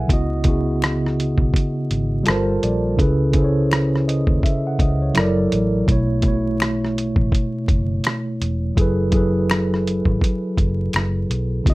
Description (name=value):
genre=lo-fi hip hop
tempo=83 BPM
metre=4/4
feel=swing 59% on 16ths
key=F# dorian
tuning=A4 = 440 Hz
part: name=mellow tine electric piano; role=accompaniment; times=0.0-11.7 s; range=B2 to A5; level=-20 LUFS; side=equal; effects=medium stereo tremolo, cassette tape, low-pass filter
part: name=vintage muted fingered electric bass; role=bass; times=0.0-11.7 s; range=E1 to D#2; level=-24 LUFS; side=equal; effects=none
part: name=lo-fi sampler-style drum kit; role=drums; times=0.1-11.7 s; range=hi-hat, kick drum, rim click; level=-19 LUFS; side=equal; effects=vintage 12-bit sampler grit
part: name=finger snap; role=percussion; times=0.8-11.1 s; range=none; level=-34 LUFS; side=left 7 dB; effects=none
room=light reverb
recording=vinyl crackle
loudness=-17 LUFS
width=side -20 dB against mid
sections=0.0-11.7 A section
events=none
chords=0.1 C#m11; 2.3 Gm11; 3.0 Amaj9#11/C#; 5.2 F#7alt; 5.9 B9sus4; 8.8 F#m11